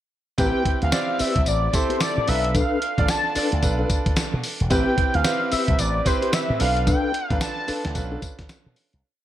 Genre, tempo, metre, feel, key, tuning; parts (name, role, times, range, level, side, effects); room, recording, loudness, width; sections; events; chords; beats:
R&B, new jack swing; 111 BPM; 4/4; swing 61% on 16ths; A4 = 439 Hz
octave-doubled lead; melody; 0.4-7.9 s; C5 to A5; -25 LUFS; left 1 dB; chorus, phaser
clear concert grand piano; accompaniment; 0.4-9.1 s; C4 to D5; -27 LUFS; right 4 dB
mellow tonewheel organ; stabs; 0.4-8.2 s; C4 to B4; -28 LUFS; left 3 dB; chorus vibrato, fast rotary speaker
slap bass with an envelope filter; bass; 0.4-9.0 s; E1 to B2; -24 LUFS; equal
dusty soul sampler-style drum kit; drums; 0.4-9.0 s; hi-hat, kick drum, snare drum, tambourine; -24 LUFS; equal; gated reverb
light reverb; -20 LUFS; side -12 dB against mid
0.4-9.0 chorus
fade-out 6.9-9.0
0.4 Am9; 2.3 Bm7b5; 4.7 Am9; 6.6 Bm7b5
| 0.38 0.92 1.47 2.00 | 2.55 3.09 3.63 4.17 | 4.71 5.25 5.79 6.33 | 6.87 7.41 7.95 8.49